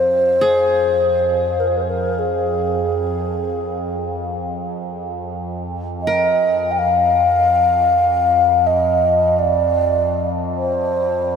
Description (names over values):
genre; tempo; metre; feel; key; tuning
world meditative, free-time meditation music; free time; none; none; F dorian; A4 = 445 Hz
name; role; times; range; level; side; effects
mellow low xiao; melody; 0.0-11.4 s; Ab4 to G5; -16 LUFS; left 1 dB; none
overtone-sweeping drone; drone; 0.0-11.4 s; F2; -24 LUFS; equal; chorus, built-in reverb
qanun; texture; 0.4-11.4 s; Ab4 to Bb4; -28 LUFS; equal; none
room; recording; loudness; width
wet huge ambient reverb, RT60 8.1 s; dreamy mix soaked in reverb; -15 LUFS; side -6 dB against mid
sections
0.0-11.4 A section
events
none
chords
none